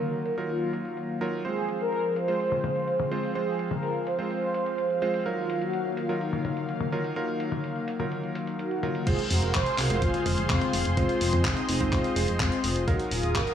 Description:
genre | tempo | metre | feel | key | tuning
italo disco | 126 BPM | 4/4 | straight | unclear | A4 = 440 Hz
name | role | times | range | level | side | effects
mellow synth brass | melody | 0.0-13.5 s | C4 to C5 | -30 LUFS | equal | chorus, tape echo
warm analog pad | sustained chords | 0.0-13.5 s | Eb3 to Eb6 | -33 LUFS | equal | chorus
warm electric grand piano | stabs | 0.0-13.5 s | Gb3 to F5 | -33 LUFS | right 3 dB | none
dusty soul sampler-style drum kit | drums | 0.0-13.5 s | crash cymbal, handclaps, hi-hat, toms | -32 LUFS | left 3 dB | low-pass filter on hats, low-pass filter on toms, low-pass filter on cymbals, low-pass filter on snare
chorused synth bass | bass | 9.1-13.5 s | Eb1 to F2 | -28 LUFS | equal | tube saturation
electronic kick drum | drums | 9.1-13.4 s | none | -29 LUFS | equal | overdrive
room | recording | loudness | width
light reverb, digital ambience | small room ambience | -25 LUFS | side -9 dB against mid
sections
0.0-9.1 A section; 9.1-13.5 B section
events
filter sweep on analog synth pad 0.0-9.1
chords
0.0 Ebmadd9; 1.4 Fm; 5.3 Ebmadd9; 9.1 Fm; 12.9 Ebmadd9

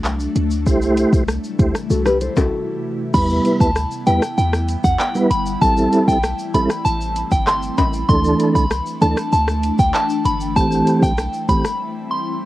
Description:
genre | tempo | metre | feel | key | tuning
dancehall | 97 BPM | 4/4 | straight | E minor | A4 = 439 Hz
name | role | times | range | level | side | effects
ethereal airy pad | sustained chords | 0.0-12.5 s | C3 to E4 | -26 LUFS | left 2 dB | ensemble chorus, built-in reverb, phaser
warm 808-style bass | bass | 0.0-11.6 s | G1 to E2 | -21 LUFS | equal | none
afro-pop drum kit | drums | 0.0-11.8 s | crash cymbal, handclaps, hi-hat, kick drum, rim click, shaker | -20 LUFS | equal | overdrive
tube shaker and timbales | percussion | 0.0-11.8 s | none | -31 LUFS | left 5 dB | none
mellow tonewheel organ | accompaniment | 0.7-11.6 s | E3 to C5 | -16 LUFS | right 2 dB | chorus vibrato, fast rotary speaker, sidechain pumping
nylon-string guitar | arpeggios | 1.9-3.1 s | F#4 to C5 | -20 LUFS | left 3 dB | none
soft synth bell | melody | 3.1-12.2 s | F#5 to C6 | -20 LUFS | equal | chorus, cassette tape, tape echo
room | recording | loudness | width
light reverb | home recording on cassette | -15 LUFS | side -16 dB against mid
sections
0.0-3.1 A section; 3.1-12.5 B section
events
break 2.5-3.1, 11.8-12.5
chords
0.0 D; 0.7 C6; 3.1 Em; 5.6 Am7; 8.1 Dsus2; 10.6 Am7

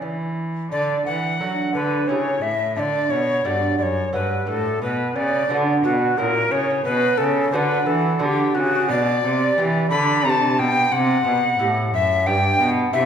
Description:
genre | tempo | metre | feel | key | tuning
classical, baroque-style sonata movement with continuo | 88 BPM | 3/4 | straight | D major, G major from 8.9 s | A4 = 438 Hz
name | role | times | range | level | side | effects
alto recorder | melody | 0.0-13.1 s | F#4 to B5 | -20 LUFS | left 1 dB | none
lute | accompaniment | 0.0-13.1 s | F#2 to G4 | -25 LUFS | right 2 dB | none
rich cello | bass | 0.0-13.1 s | F#2 to F#3 | -23 LUFS | right 1 dB | none
room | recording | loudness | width
wet recital hall reverb, RT60 1.4 s | recorded in a church or concert hall | -18 LUFS | side -8 dB against mid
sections
0.7-13.1 A section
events
none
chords
0.0 D; 2.1 A7/C#; 2.8 D; 4.8 Bm; 6.2 F#7/A#; 6.8 Bm; 8.9 G/B; 10.9 C; 12.3 G

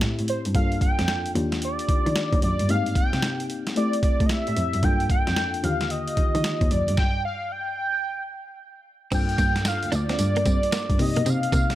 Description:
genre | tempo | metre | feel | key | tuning
R&B, new jack swing | 112 BPM | 4/4 | swing 65% on 16ths | G minor | A4 = 440 Hz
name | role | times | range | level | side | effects
FM electric piano | accompaniment | 0.0-11.8 s | D3 to A4 | -31 LUFS | left 4 dB | chorus
warm cello | bass | 0.0-11.7 s | D2 to A3 | -26 LUFS | equal | none
boom bap sampler-style drum kit | drums | 0.0-11.8 s | crash cymbal, hi-hat, kick drum, snare drum, tambourine | -25 LUFS | equal | none
octave-doubled lead | melody | 0.3-11.8 s | C5 to G5 | -27 LUFS | equal | chorus, phaser, digital delay
direct-recorded clean electric guitar | riff | 9.1-11.7 s | Bb3 to D4 | -31 LUFS | right 3 dB | analog chorus
room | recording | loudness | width
little or no reverb | none | -21 LUFS | side -14 dB against mid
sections
0.0-9.1 A section; 9.1-11.8 B section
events
stop 7.0-9.1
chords
0.0 Am7; 0.5 Gm7; 1.4 Ebmaj7; 2.7 Abmaj7; 3.8 Am7; 4.8 Gm7; 5.6 Ebmaj7; 7.0 N.C.; 9.1 Gm7; 11.0 Cm7

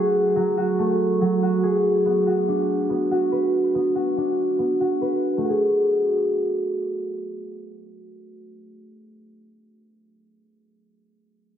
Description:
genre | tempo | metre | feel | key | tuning
hip hop | 142 BPM | 4/4 | half-time | F# minor | A4 = 440 Hz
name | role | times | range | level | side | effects
concert harp | arpeggios | 0.0-9.6 s | F#3 to B4 | -20 LUFS | equal | low-pass filter, tape echo
room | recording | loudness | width
moderate digital room reverb, RT60 1.1 s | heavily compressed radio sound, multiband compression, nothing above 7.7 kHz | -19 LUFS | side -10 dB against mid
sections
0.0-5.4 A section; 5.4-8.8 B section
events
filter sweep on harp 0.0-5.4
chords
0.0 F#madd9; 2.1 Bm

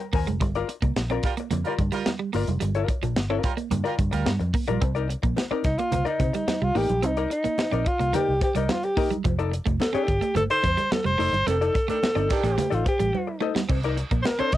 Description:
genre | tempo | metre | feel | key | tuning
funk | 108 BPM | 4/4 | straight | C dorian | A4 = 444 Hz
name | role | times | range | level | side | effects
hollow-body jazz guitar | accompaniment | 0.0-14.6 s | Eb4 to Ab5 | -30 LUFS | left 9 dB | cassette tape
tight funk drum kit | drums | 0.0-14.6 s | crash cymbal, hi-hat, kick drum, snare drum | -27 LUFS | equal | cassette tape
clean electric guitar | riff | 0.1-14.6 s | F3 to C4 | -31 LUFS | right 8 dB | cassette tape
vintage muted fingered electric bass | bass | 0.1-14.6 s | F1 to C3 | -27 LUFS | equal | none
congas | percussion | 0.3-14.4 s | none | -33 LUFS | right 6 dB | none
clear horn section | second line | 1.2-4.3, 11.5-12.7 s | Eb3 to Bb4 | -30 LUFS | right 8 dB | cassette tape
cowbell | percussion | 4.8-14.4 s | none | -38 LUFS | left 11 dB | none
breathy alto saxophone | melody | 5.6-14.6 s | Eb4 to Eb5 | -24 LUFS | equal | cassette tape
room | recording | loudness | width
light reverb | home recording on cassette | -22 LUFS | side -14 dB against mid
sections
0.0-4.8 A section; 4.8-14.6 B section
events
alto saxophone solo 4.8-14.6; band accent 11.5-13.7; drum fill 13.1-13.7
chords
0.4 Gm7; 4.8 Cm9; 9.2 F13; 13.7 Cm9

